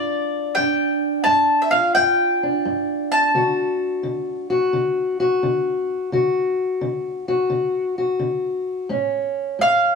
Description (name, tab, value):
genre	acoustic country blues, solo or duo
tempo	86 BPM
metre	4/4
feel	swing 67% on 8ths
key	unclear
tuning	A4 = 439 Hz
part	mandolin	melody	0.0-4.7, 9.6-10.0 s	D5 to A5	-18 LUFS	equal	none
part	fingerpicked steel-string acoustic guitar	accompaniment	0.0-10.0 s	G2 to F#4	-21 LUFS	left 1 dB	none
room	moderate stone room reverb, RT60 1.0 s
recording	band playing live in one room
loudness	-18 LUFS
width	side -5 dB against mid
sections	0.0-10.0 A section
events	none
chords	0.0 G7(no3); 3.3 D; 8.9 A